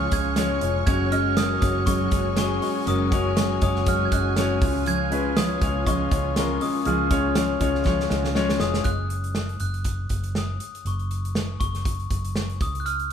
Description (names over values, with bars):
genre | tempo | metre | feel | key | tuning
piano-driven pop | 120 BPM | 4/4 | swing 56% on 16ths | unclear | A4 = 440 Hz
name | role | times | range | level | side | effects
glockenspiel with soft plastic mallets | melody | 0.0-13.1 s | C#6 to G#6 | -29 LUFS | right 1 dB | none
felt-muted upright piano | accompaniment | 0.0-8.9 s | C#3 to D#5 | -25 LUFS | left 5 dB | none
rich studio string section | sustained chords | 0.0-8.8 s | E#4 to C#6 | -37 LUFS | left 1 dB | none
fingerpicked steel-string acoustic guitar | riff | 0.0-9.4 s | C#3 to F#4 | -30 LUFS | right 5 dB | none
vintage muted fingered electric bass | bass | 0.0-13.1 s | E#1 to C#2 | -27 LUFS | equal | none
natural country drum kit | drums | 0.1-13.1 s | hi-hat, kick drum, snare drum | -26 LUFS | right 1 dB | none
room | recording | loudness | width
moderate large studio reverb, RT60 1.1 s | band playing live in one room | -21 LUFS | side -8 dB against mid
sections
0.0-8.9 A section; 8.9-13.1 B section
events
drum fill 7.9-8.9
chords
0.0 C#; 0.9 F#sus2; 4.6 C#; 8.9 F#5; 12.6 C#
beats
0.37 | 0.87 1.37 1.87 2.37 | 2.87 3.37 3.87 4.37 | 4.86 5.36 5.86 6.36 | 6.86 7.36 7.86 8.36 | 8.86 9.36 9.86 10.36 | 10.86 11.36 11.86 12.36 | 12.86